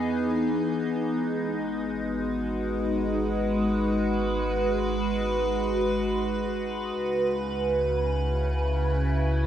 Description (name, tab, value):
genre	ambient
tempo	free time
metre	none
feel	none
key	unclear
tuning	A4 = 440 Hz
part	evolving wavetable pad	sustained chords	0.0-9.5 s	C#3 to B4	-25 LUFS	equal	chorus, built-in reverb, phaser
part	round analog bass	bass	0.0-9.5 s	G#1 to E2	-31 LUFS	equal	none
room	wet cathedral reverb, RT60 5.2 s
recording	none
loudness	-24 LUFS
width	side -10 dB against mid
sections	0.0-9.5 A section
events	fade-in on analog synth bass 0.0-9.5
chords	0.0 Emaj7; 1.1 G#m7; 7.0 C#m7